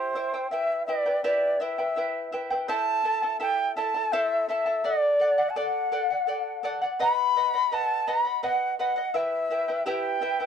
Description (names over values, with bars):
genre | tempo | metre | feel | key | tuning
andean folk, Andean ensemble | 84 BPM | 3/4 | straight | E minor | A4 = 440 Hz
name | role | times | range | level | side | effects
reedy large quena | melody | 0.0-10.5 s | C5 to B5 | -24 LUFS | equal | none
charango | accompaniment | 0.0-10.5 s | E4 to A5 | -30 LUFS | equal | none
room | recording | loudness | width
light reverb | dry, close 1970s-style studio recording | -24 LUFS | side -7 dB against mid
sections
0.0-2.7 A section; 2.7-10.5 B section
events
none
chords
0.0 C; 0.5 Em; 2.7 Am; 4.8 D; 7.0 B; 9.2 Em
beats
| 0.52 1.24 1.96 | 2.69 3.41 4.13 | 4.85 5.57 6.28 | 7.00 7.72 8.44 | 9.15 9.87